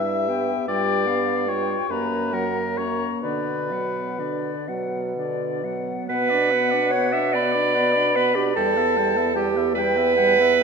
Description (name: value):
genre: classical, slow romantic movement for wind quintet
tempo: 41-52 BPM (dotted quarters)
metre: 6/8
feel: rubato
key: B minor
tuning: A4 = 443 Hz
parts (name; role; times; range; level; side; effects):
- silver concert flute; melody; 0.0-10.6 s; D5 to B5; -29 LUFS; left 10 dB; none
- warm oboe; second line; 0.0-10.6 s; A#4 to G5; -28 LUFS; left 5 dB; none
- clear French horn; accompaniment; 0.0-10.6 s; D3 to D4; -30 LUFS; left 1 dB; none
- clear clarinet; accompaniment; 0.0-10.6 s; A#3 to E5; -23 LUFS; right 5 dB; none
- dark bassoon; bass; 0.0-10.6 s; E2 to B2; -26 LUFS; right 1 dB; none
room: wet scoring stage reverb, RT60 2.0 s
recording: minimal, uncompressed stereo recording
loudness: -20 LUFS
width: side -5 dB against mid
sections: 0.0-6.1 A section; 6.1-10.6 A section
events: none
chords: 0.0 Em/G; 0.7 G7; 1.9 F#; 3.2 Bm; 8.6 Em